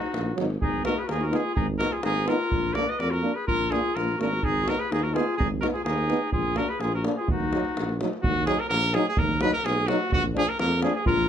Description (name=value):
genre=balkan folk, Balkan brass band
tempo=126 BPM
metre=2/4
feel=straight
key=Eb harmonic minor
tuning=A4 = 436 Hz
part: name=clear trumpet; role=melody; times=0.0-11.3 s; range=Gb4 to Eb5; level=-27 LUFS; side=right 2 dB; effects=none
part: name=warm clarinet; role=second line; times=0.0-8.0, 11.1-11.3 s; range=Eb4 to Cb5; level=-30 LUFS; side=left 6 dB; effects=none
part: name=davul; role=percussion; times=0.0-11.2 s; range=none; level=-30 LUFS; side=equal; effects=none
part: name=mellow tuba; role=bass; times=0.1-11.3 s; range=Ab1 to F2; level=-29 LUFS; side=equal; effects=none
part: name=warm French horn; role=accompaniment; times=0.4-10.9 s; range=D4 to Eb4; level=-30 LUFS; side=left 6 dB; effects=none
part: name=warm euphonium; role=accompaniment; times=0.4-10.9 s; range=F3 to Cb4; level=-31 LUFS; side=right 8 dB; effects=none
room=light reverb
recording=close, detailed microphones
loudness=-23 LUFS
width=side -9 dB against mid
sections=0.6-8.2 A section; 8.2-11.3 B section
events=none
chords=0.0 Ebm; 0.6 Abm; 2.5 Bb; 4.4 Abm; 6.3 Bb; 7.3 Ebm; 10.1 Bb